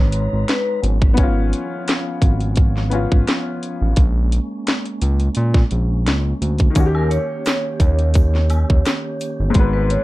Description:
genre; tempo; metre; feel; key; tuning
hip hop, boom-bap hip-hop; 86 BPM; 4/4; swing 54% on 16ths; unclear; A4 = 440 Hz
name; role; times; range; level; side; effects
vibraphone with medium hard mallets; melody; 0.0-0.8, 7.0-10.0 s; A#4 to C#5; -25 LUFS; left 1 dB; high-pass filter, low-pass filter, ping-pong delay
clear upright piano; accompaniment; 0.0-10.0 s; G#2 to B4; -24 LUFS; left 4 dB; cassette tape, high-pass filter, low-pass filter
percussive tonewheel organ; sustained chords; 0.0-9.5 s; D#3 to A#5; -28 LUFS; right 1 dB; fast rotary speaker, high-pass filter, low-pass filter
smooth synth bass; bass; 0.0-10.0 s; G1 to A#2; -18 LUFS; equal; none
drum and bass drum kit; drums; 0.1-10.0 s; hi-hat, kick drum, snare drum; -16 LUFS; equal; none
tube shaker and woodblock; percussion; 6.8-9.4 s; none; -33 LUFS; equal; none
room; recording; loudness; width
little or no reverb; dark, warm production; -16 LUFS; side -18 dB against mid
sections
0.0-10.0 A section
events
none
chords
0.0 G#madd9; 0.8 C#7/G#; 4.0 A#m7; 6.8 D#7

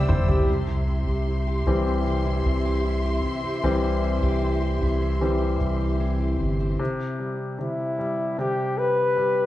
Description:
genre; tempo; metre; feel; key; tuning
pop ballad; 76 BPM; 4/4; straight; C major; A4 = 440 Hz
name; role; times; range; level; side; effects
mellow flugelhorn; melody; 0.0-0.1, 7.6-9.5 s; E4 to B4; -23 LUFS; left 2 dB; none
bright grand piano; accompaniment; 0.0-9.5 s; C3 to A5; -27 LUFS; left 2 dB; slapback echo
dark studio string section; sustained chords; 0.0-6.8 s; G4 to E6; -33 LUFS; left 1 dB; none
fingerpicked plugged-in steel-string acoustic guitar; arpeggios; 0.0-7.4 s; C3 to G4; -31 LUFS; right 1 dB; slapback echo
saturated sub bass; bass; 0.0-6.8 s; G1 to C2; -24 LUFS; equal; none
toms; drums; 0.1-0.5 s; none; -23 LUFS; equal; none
room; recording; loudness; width
light reverb, studio reverb; live gig heard through the venue's PA, club reverb, nothing above 10.4 kHz; -22 LUFS; side -14 dB against mid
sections
0.5-6.8 A section; 6.8-9.5 B section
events
grand piano fill 0.0-0.5; drum fill 0.0-0.5; grand piano solo 0.5-6.8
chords
0.5 C

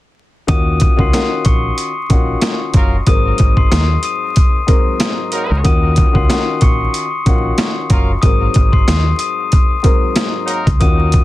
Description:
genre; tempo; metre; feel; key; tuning
hip hop, boom-bap hip-hop; 93 BPM; 4/4; swing 55% on 16ths; Eb dorian; A4 = 440 Hz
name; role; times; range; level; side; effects
glockenspiel with soft plastic mallets; melody; 0.5-11.2 s; C6 to Eb7; -20 LUFS; left 5 dB; high-pass filter, low-pass filter, plate reverb, ping-pong delay
dark upright piano; accompaniment; 0.5-11.2 s; Ab2 to Bb4; -22 LUFS; left 2 dB; high-pass filter, low-pass filter, plate reverb
deep dub fingered electric bass; bass; 0.5-11.2 s; Gb1 to Eb2; -16 LUFS; equal; none
boom bap sampler-style drum kit; drums; 0.5-11.2 s; hi-hat, kick drum, snare drum; -13 LUFS; equal; none
clear horn section; stabs; 2.8-10.7 s; Gb3 to Bb4; -26 LUFS; right 1 dB; high-pass filter, low-pass filter, plate reverb, ping-pong delay
room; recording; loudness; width
little or no reverb; dense, heavily limited modern master, vinyl crackle; -12 LUFS; side -16 dB against mid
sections
0.5-11.2 A section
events
none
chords
0.5 Ebm9; 3.1 Ab9; 5.7 Ebm9; 8.2 Ab9

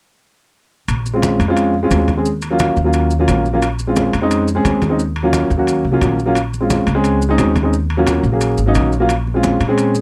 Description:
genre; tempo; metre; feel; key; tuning
Afro-Cuban jazz; 176 BPM; 4/4; straight; Bb minor; A4 = 440 Hz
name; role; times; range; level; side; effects
upright bass; bass; 0.9-10.0 s; Ab1 to Bb2; -21 LUFS; equal; none
congas; percussion; 0.9-10.0 s; none; -26 LUFS; equal; none
maracas; percussion; 0.9-10.0 s; none; -34 LUFS; equal; none
timbales; percussion; 0.9-9.9 s; none; -29 LUFS; equal; none
warm upright piano; accompaniment; 1.1-9.9 s; Gb3 to Ab4; -18 LUFS; equal; none
room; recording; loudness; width
light reverb; dry, close 1970s-style studio recording; -16 LUFS; mono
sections
0.9-10.0 A section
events
none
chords
0.9 Bbm7; 2.3 Ebm7; 3.6 Bbm7; 5.0 Ebm7; 6.4 Bbm7; 7.7 Ebm7; 9.1 Bbm7

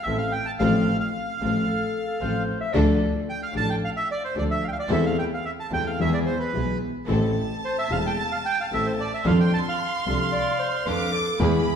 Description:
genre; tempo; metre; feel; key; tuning
tango; 111 BPM; 4/4; rubato; A minor; A4 = 440 Hz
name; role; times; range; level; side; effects
bandoneon; melody; 0.0-11.1 s; B4 to A5; -27 LUFS; right 2 dB; none
dark upright piano; accompaniment; 0.1-11.6 s; E1 to A4; -26 LUFS; left 2 dB; none
warm studio string section; stabs; 0.1-11.6 s; B3 to A4; -35 LUFS; right 2 dB; none
clear double bass; bass; 0.1-11.6 s; E1 to F2; -28 LUFS; right 1 dB; none
mellow clarinet; second line; 1.7-3.1, 10.3-11.8 s; G#4 to E5; -29 LUFS; left 2 dB; none
warm chamber violin section; second line; 7.1-11.8 s; A5 to D6; -30 LUFS; equal; none
room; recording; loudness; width
wet recital hall reverb, RT60 1.5 s; recorded in a church or concert hall; -22 LUFS; side -7 dB against mid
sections
0.0-11.8 A section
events
none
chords
0.0 Am; 0.6 F/A; 2.7 Dm; 4.9 Am/E; 6.0 E; 7.1 Am; 9.3 F6

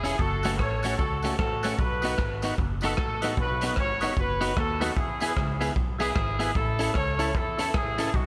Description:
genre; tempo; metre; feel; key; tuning
ska; 151 BPM; 4/4; swing 61% on 8ths; unclear; A4 = 441 Hz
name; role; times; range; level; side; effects
warm horn section; melody; 0.0-8.3 s; D#4 to C#5; -32 LUFS; equal; dub echo
clean electric guitar; accompaniment; 0.0-8.1 s; A3 to A4; -34 LUFS; equal; none
overdriven tonewheel organ; stabs; 0.0-8.1 s; D#4 to C#5; -39 LUFS; equal; chorus vibrato, slow rotary speaker, dub echo, plate reverb
upright bass; bass; 0.0-8.3 s; E1 to E2; -34 LUFS; equal; none
raw garage drum kit; drums; 0.0-8.3 s; hi-hat, kick drum, rim click; -32 LUFS; equal; none
tambourine; percussion; 0.0-8.1 s; none; -49 LUFS; equal; none
room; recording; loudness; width
light reverb; none; -27 LUFS; mono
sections
0.0-8.3 A section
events
none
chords
0.2 F#m; 1.8 B; 5.0 E; 6.6 A

